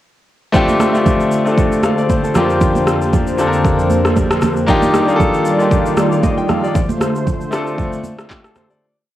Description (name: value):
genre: amapiano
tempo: 116 BPM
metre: 4/4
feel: swing 55% on 16ths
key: F mixolydian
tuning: A4 = 438 Hz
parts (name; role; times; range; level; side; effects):
- clear concert grand piano; accompaniment; 0.5-8.9 s; F3 to G5; -16 LUFS; left 2 dB; none
- warm analog pad; sustained chords; 0.5-8.8 s; F2 to D5; -19 LUFS; equal; chorus, sidechain pumping
- deep house drum kit; drums; 0.5-8.8 s; handclaps, kick drum, rim click, shaker; -18 LUFS; equal; overdrive, cassette tape
- congas; percussion; 0.5-8.7 s; none; -21 LUFS; right 4 dB; none
room: light reverb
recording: home recording on cassette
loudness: -12 LUFS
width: side -13 dB against mid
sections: 0.5-8.8 groove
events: fade-out 6.8-8.8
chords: 0.5 F6; 2.4 Bb69/F; 4.7 Ebmaj9; 6.8 Dm7